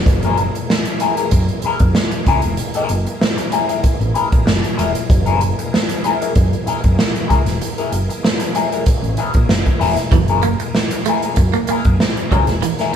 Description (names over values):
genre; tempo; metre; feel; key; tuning
funk; 96 BPM; 4/4; straight; F# mixolydian; A4 = 438 Hz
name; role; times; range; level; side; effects
bright tonewheel organ; sustained chords; 0.0-13.0 s; E3 to A#3; -29 LUFS; right 1 dB; slow rotary speaker, chorus vibrato
hollow-body short-scale fingered electric bass; bass; 0.0-13.0 s; E1 to F#2; -20 LUFS; equal; none
electric guitar at the edge of break-up; accompaniment; 0.1-12.9 s; E4 to A#4; -21 LUFS; left 6 dB; wah, phaser
swinging big-band drum kit; drums; 0.1-12.9 s; hi-hat, kick drum, snare drum; -16 LUFS; equal; none
clean electric guitar; riff; 10.1-12.7 s; E3 to A#3; -22 LUFS; right 7 dB; none
room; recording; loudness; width
moderate large studio reverb, RT60 1.2 s; band playing live in one room; -14 LUFS; side -8 dB against mid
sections
0.1-13.0 A section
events
none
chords
0.1 F#9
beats
| 0.06 0.69 1.32 1.95 | 2.58 3.21 3.84 4.47 | 5.09 5.72 6.35 6.98 | 7.61 8.24 8.86 9.49 | 10.12 10.75 11.38 12.00 | 12.63